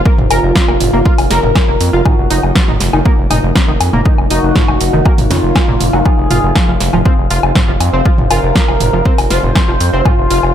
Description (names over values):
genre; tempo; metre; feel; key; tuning
melodic techno; 120 BPM; 4/4; straight; unclear; A4 = 440 Hz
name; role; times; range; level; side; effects
deep dark ambient pad; sustained chords; 0.0-10.5 s; Bb3 to F5; -20 LUFS; equal; chorus, built-in reverb, sidechain pumping
tight sequenced synth; arpeggios; 0.1-10.4 s; Bb2 to Bb5; -19 LUFS; right 1 dB; chorus, cassette tape, sidechain pumping, tape echo
electronic kick drum; drums; 0.1-10.2 s; none; -12 LUFS; equal; overdrive
gritty driven synth bass; bass; 0.2-10.5 s; F1 to F2; -15 LUFS; equal; sidechain pumping
techno drum kit; drums; 0.2-10.5 s; hi-hat, snare drum, toms, woodblock; -17 LUFS; left 1 dB; none
expressive portamento lead; melody; 0.3-10.5 s; F4 to C5; -19 LUFS; left 1 dB; wide subtle chorus, cassette tape, sidechain pumping, ping-pong delay
room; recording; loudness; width
light reverb; none; -9 LUFS; side -10 dB against mid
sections
0.0-10.5 A section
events
none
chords
0.0 Bbm/F; 2.1 Ebmadd9/F; 6.1 F5